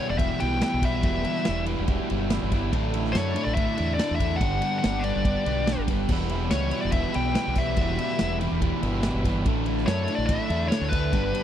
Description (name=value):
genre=indie rock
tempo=142 BPM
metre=4/4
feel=straight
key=E minor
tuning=A4 = 441 Hz
part: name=nasal lead guitar with a parked wah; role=melody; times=0.0-11.4 s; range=B4 to G5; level=-29 LUFS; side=left 3 dB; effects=overdrive, slapback echo
part: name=sweeping resonant pad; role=sustained chords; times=0.0-11.4 s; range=D4 to B5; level=-40 LUFS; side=right 1 dB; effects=chorus
part: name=crunchy overdriven guitar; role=riff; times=0.0-11.4 s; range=E2 to G4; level=-28 LUFS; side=right 1 dB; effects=none
part: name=growling fingered electric bass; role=bass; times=0.1-11.3 s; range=E1 to F#2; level=-28 LUFS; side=equal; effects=overdrive
part: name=vintage drum kit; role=drums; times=0.2-11.4 s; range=crash cymbal, kick drum, ride cymbal, snare drum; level=-28 LUFS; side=equal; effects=none
room=little or no reverb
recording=dry, close 1970s-style studio recording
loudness=-22 LUFS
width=side -10 dB against mid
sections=0.0-11.4 A section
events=none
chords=0.0 Em; 2.7 Asus4; 4.4 Gmaj7; 6.1 Em; 9.5 Asus4